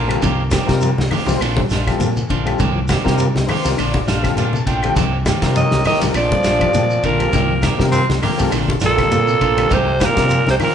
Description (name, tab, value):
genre	afrobeat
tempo	101 BPM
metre	4/4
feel	swing 55% on 16ths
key	C dorian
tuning	A4 = 440 Hz
part	raspy baritone saxophone	second line	0.0-0.6, 7.6-8.6 s	Bb3 to C4	-25 LUFS	left 1 dB	none
part	electric guitar at the edge of break-up	stabs	0.0-10.7 s	Eb3 to G4	-25 LUFS	right 5 dB	none
part	fingered electric bass	bass	0.0-10.6 s	Bb1 to C3	-20 LUFS	equal	none
part	overdriven combo organ	accompaniment	0.1-10.4 s	G3 to A5	-24 LUFS	left 3 dB	none
part	mellow electric guitar	arpeggios	0.1-10.7 s	C3 to G3	-27 LUFS	left 6 dB	none
part	vintage drum kit	drums	0.1-10.7 s	hi-hat, kick drum, ride cymbal, snare drum	-22 LUFS	equal	none
part	claves	percussion	0.1-10.7 s	none	-34 LUFS	left 2 dB	none
part	congas	percussion	0.2-10.7 s	none	-24 LUFS	left 2 dB	none
part	shekere	percussion	0.2-10.7 s	none	-29 LUFS	right 2 dB	none
part	raspy alto saxophone	melody	5.6-10.7 s	A4 to Eb5	-18 LUFS	equal	none
part	bright trombone	second line	5.6-10.7 s	Bb2 to F3	-23 LUFS	right 4 dB	none
room	moderate large studio reverb, RT60 1.5 s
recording	band playing live in one room, nothing above 10.7 kHz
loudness	-14 LUFS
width	side -8 dB against mid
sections	0.0-10.7 A section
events	transistor combo organ fill 3.2-5.0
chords	0.2 Cm7; 1.4 Bbmaj7; 2.6 Cm7; 3.8 Bbmaj7; 5.0 Cm7; 6.1 Bbmaj7; 7.3 Cm7; 8.5 Bbmaj7; 9.7 Cm7